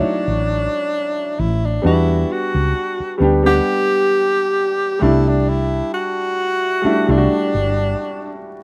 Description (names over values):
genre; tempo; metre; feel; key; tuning
R&B, neo-soul; 66 BPM; 4/4; swing 54% on 16ths; unclear; A4 = 442 Hz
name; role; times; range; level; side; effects
breathy tenor saxophone; melody; 0.0-8.4 s; D4 to G4; -22 LUFS; equal; none
clear concert grand piano; accompaniment; 0.0-8.6 s; F#3 to F#5; -23 LUFS; equal; none
woody fretless electric bass; bass; 0.0-7.9 s; G1 to E2; -20 LUFS; equal; none
room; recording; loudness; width
moderate studio reverb, RT60 0.5 s; rough home demo mix, vinyl crackle; -18 LUFS; mono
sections
0.0-8.6 A section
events
none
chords
0.0 Dmaj9; 1.8 Em7; 5.0 C69